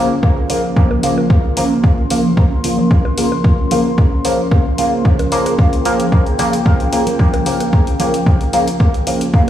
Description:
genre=dub techno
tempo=112 BPM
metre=4/4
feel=swing 53% on 16ths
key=Bb dorian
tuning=A4 = 444 Hz
part: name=deep dark ambient pad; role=sustained chords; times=0.0-9.5 s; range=Db4 to C6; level=-22 LUFS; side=left 1 dB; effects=chorus, built-in reverb, sidechain pumping
part: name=resonant sweep polysynth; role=stabs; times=0.0-9.5 s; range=Db3 to Bb3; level=-16 LUFS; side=equal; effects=chorus, phaser, sidechain pumping, dub echo
part: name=electronic kick drum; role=drums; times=0.2-9.5 s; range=none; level=-13 LUFS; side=equal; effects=overdrive, studio ambience
part: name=bongos and congas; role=percussion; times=0.2-8.9 s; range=none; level=-27 LUFS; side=equal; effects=none
part: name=electronic hi-hat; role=drums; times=0.5-9.3 s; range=none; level=-26 LUFS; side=left 2 dB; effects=overdrive, studio ambience
room=light reverb, digital ambience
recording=played on a big sound system in a bare room, stone room reverb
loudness=-12 LUFS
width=side -11 dB against mid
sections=0.0-9.5 A section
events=none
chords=0.0 Bbm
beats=0.23 | 0.77 1.30 1.84 2.37 | 2.91 3.44 3.98 4.51 | 5.05 5.59 6.12 6.66 | 7.19 7.73 8.27 8.80 | 9.34

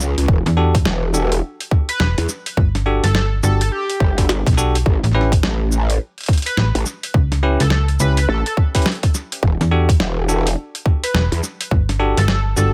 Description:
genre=glitch hop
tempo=105 BPM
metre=4/4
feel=swing 62% on 16ths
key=E dorian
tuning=A4 = 441 Hz
part: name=growl bass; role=bass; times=0.0-11.4 s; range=E1 to E2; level=-21 LUFS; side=equal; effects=chorus
part: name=boom bap sampler-style drum kit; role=drums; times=0.0-12.7 s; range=hi-hat, shaker, snare drum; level=-25 LUFS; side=equal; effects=none
part: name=electronic kick drum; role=drums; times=0.3-11.9 s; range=none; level=-18 LUFS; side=equal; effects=none
part: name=slap-like FM bass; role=bass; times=0.5-12.7 s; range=E1 to E2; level=-19 LUFS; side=equal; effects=none
part: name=bell-like tine electric piano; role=stabs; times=0.6-12.7 s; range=C#4 to B4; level=-25 LUFS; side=equal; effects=vintage 12-bit sampler grit, sidechain pumping, digital delay
part: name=sync lead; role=melody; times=1.9-12.7 s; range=G4 to B4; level=-28 LUFS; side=equal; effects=chorus, digital delay
room=little or no reverb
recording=none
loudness=-18 LUFS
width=mono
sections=0.0-12.7 A section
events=none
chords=0.3 Em11; 4.9 A7; 9.4 Em11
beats=| 0.28 0.86 1.43 2.00 | 2.57 3.14 3.71 4.28 | 4.86 5.43 6.00 6.57 | 7.14 7.71 8.28 8.86 | 9.43 10.00 10.57 11.14 | 11.71 12.28

